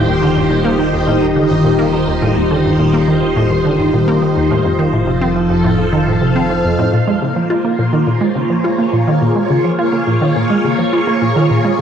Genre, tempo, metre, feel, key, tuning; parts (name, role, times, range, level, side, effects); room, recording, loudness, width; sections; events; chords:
ambient, sequencer-driven space music; 105 BPM; 4/4; straight; Bb minor from 6.9 s; A4 = 437 Hz
phased string machine; sustained chords; 0.0-11.8 s; Eb3 to F5; -16 LUFS; equal; ensemble chorus, phaser
vibraphone with medium mallets; arpeggios; 0.0-7.0 s; F3 to G5; -19 LUFS; left 3 dB; auto-pan, tape echo
resonant blip pluck; riff; 0.0-11.8 s; Eb2 to F4; -16 LUFS; right 1 dB; chorus, tape echo
round analog bass; bass; 0.0-6.9 s; Eb1 to F1; -26 LUFS; equal
wet scoring stage reverb, RT60 1.8 s; worn, warbling old tape, cassette tape, warbly pitch drift; -12 LUFS; side -8 dB against mid
0.0-6.9 A section; 6.9-11.8 B section
0.0 Eb6; 4.6 F7; 6.9 Bbm7